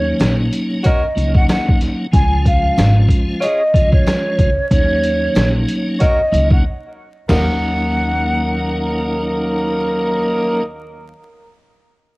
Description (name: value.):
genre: hip hop, boom-bap hip-hop.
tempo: 93 BPM.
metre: 4/4.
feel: swing 60% on 16ths.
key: Eb minor.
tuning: A4 = 439 Hz.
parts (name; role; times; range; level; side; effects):
breathy mellow jazz flute; melody; 0.0-9.2 s; Db5 to Ab5; -20 LUFS; equal; cassette tape, analog delay.
tonewheel organ; accompaniment; 0.0-10.6 s; F3 to F4; -21 LUFS; equal; overdrive, chorus vibrato, slow rotary speaker, cassette tape.
upright bass; bass; 0.0-11.1 s; Ab1 to Eb2; -18 LUFS; equal; none.
trip hop sampler-style drum kit; drums; 0.2-7.5 s; crash cymbal, hi-hat, kick drum, rim click, snare drum, toms; -16 LUFS; equal; cassette tape.
tambourine; percussion; 0.2-7.6 s; none; -41 LUFS; right 2 dB; none.
mellow horn section; stabs; 0.8-10.6 s; Gb3 to Db5; -22 LUFS; equal; analog delay.
room: light reverb, small room ambience.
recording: home recording on cassette, vinyl crackle.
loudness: -13 LUFS.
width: side -23 dB against mid.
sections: 0.0-7.3 A section; 7.3-9.9 B section.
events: break 6.6-7.3.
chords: 0.0 Ebm7; 2.1 Db; 4.7 Ebm7.